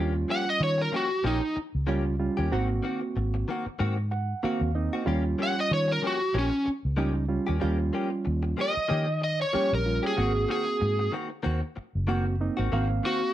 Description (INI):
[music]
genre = blues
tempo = 94 BPM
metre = 4/4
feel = swing 56% on 16ths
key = Eb mixolydian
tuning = A4 = 440 Hz
[part]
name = bright reed electric piano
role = accompaniment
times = 0.0-13.3 s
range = G3 to Gb5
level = -30 LUFS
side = right 4 dB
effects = plate reverb
[part]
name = direct-recorded clean electric guitar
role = stabs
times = 0.0-13.3 s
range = Eb3 to G4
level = -33 LUFS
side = left 3 dB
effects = lush chorus
[part]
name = vintage muted fingered electric bass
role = bass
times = 0.0-13.0 s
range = Gb1 to Eb3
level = -28 LUFS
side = equal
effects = none
[part]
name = overdriven slide guitar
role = melody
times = 0.3-1.6, 5.4-13.3 s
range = Db4 to Gb5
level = -26 LUFS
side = equal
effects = plate reverb
[sound]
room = moderate club reverb, RT60 0.6 s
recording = none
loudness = -25 LUFS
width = side -12 dB against mid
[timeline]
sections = 0.0-13.3 A section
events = reed electric piano fill 3.8-5.1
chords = 0.0 Eb9; 2.5 Ab9; 5.1 Eb9; 10.2 Ab9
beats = 0.61 1.25 1.89 | 2.52 3.16 3.80 4.44 | 5.07 5.71 6.35 6.99 | 7.62 8.26 8.90 9.54 | 10.17 10.81 11.45 12.08 | 12.72